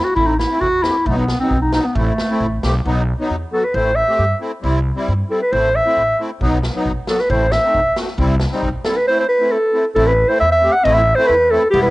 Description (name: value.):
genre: klezmer.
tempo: 135 BPM.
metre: 2/4.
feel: straight.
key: A dorian sharp4.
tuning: A4 = 440 Hz.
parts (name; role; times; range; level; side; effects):
warm clarinet; melody; 0.0-11.9 s; A3 to F#5; -15 LUFS; equal; cassette tape.
musette accordion; accompaniment; 0.0-11.9 s; F#3 to G4; -22 LUFS; left 1 dB; cassette tape.
upright bass; bass; 0.2-11.9 s; E1 to G2; -20 LUFS; equal; none.
street-band drum kit; drums; 0.2-2.7, 6.4-9.0 s; kick drum, snare drum; -25 LUFS; equal; cassette tape.
room: moderate spring reverb, RT60 1.7 s.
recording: home recording on cassette, nothing above 10.3 kHz.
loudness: -14 LUFS.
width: side -19 dB against mid.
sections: 0.0-2.9 A section; 2.9-10.0 B section; 10.0-11.9 A section.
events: none.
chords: 0.0 Am; 1.1 B; 2.0 Am; 2.9 B; 3.7 Am; 4.6 C; 5.5 Am; 6.4 B; 7.3 Am; 8.2 C; 9.1 Am.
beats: | 0.17 0.62 | 1.07 1.51 | 1.96 2.40 | 2.85 3.30 | 3.74 4.19 | 4.63 5.08 | 5.52 5.96 | 6.41 6.85 | 7.30 7.74 | 8.19 8.63 | 9.07 9.52 | 9.96 10.41 | 10.85 11.29 | 11.74.